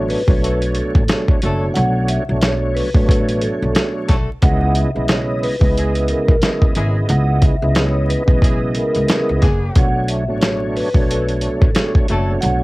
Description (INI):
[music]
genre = hip hop, boom-bap hip-hop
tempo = 90 BPM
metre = 4/4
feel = swing 58% on 16ths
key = B dorian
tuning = A4 = 439 Hz
[part]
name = vibraphone with medium mallets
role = melody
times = 0.0-12.6 s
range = A4 to F#5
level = -23 LUFS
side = equal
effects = high-pass filter, low-pass filter, cassette tape
[part]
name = bright tonewheel organ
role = accompaniment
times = 0.0-12.6 s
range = B2 to D#5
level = -21 LUFS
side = right 1 dB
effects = chorus vibrato, slow rotary speaker, cassette tape, high-pass filter, low-pass filter
[part]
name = upright bass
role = bass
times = 0.0-12.6 s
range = F#1 to C#2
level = -20 LUFS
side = equal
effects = none
[part]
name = dusty soul sampler-style drum kit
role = drums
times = 0.1-12.6 s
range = hi-hat, kick drum, snare drum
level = -16 LUFS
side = equal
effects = none
[part]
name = mellow horn section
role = stabs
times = 0.4-12.3 s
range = G#3 to A4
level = -28 LUFS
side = left 2 dB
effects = high-pass filter, low-pass filter, cassette tape, plate reverb, analog delay
[sound]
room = light reverb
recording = home recording on cassette, vinyl crackle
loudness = -14 LUFS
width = side -21 dB against mid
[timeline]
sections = 0.0-12.6 A section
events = none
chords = 0.0 Bm7; 4.4 C#m7; 9.8 Bm7